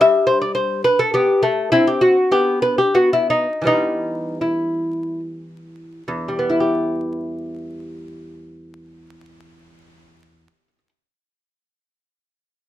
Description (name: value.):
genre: classical, baroque-style dance for lute.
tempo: 69-108 BPM.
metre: 3/4.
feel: rubato.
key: E minor.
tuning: A4 = 441 Hz.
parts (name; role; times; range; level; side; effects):
lute; solo; 0.0-11.0 s; E2 to E5; -16 LUFS; left 1 dB; none.
room: moderate studio reverb, RT60 0.6 s.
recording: vinyl crackle.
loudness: -16 LUFS.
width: side -13 dB against mid.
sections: 0.0-6.1 A section; 6.1-11.2 B section.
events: slowing down 0.9-6.1.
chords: 0.0 G69; 1.7 N.C.; 3.7 Em.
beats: | 0.02 0.58 1.15 | 1.72 2.32 2.97 | 3.67 4.44 5.24 | 6.08 6.94 7.79 | 8.63 9.48 10.33.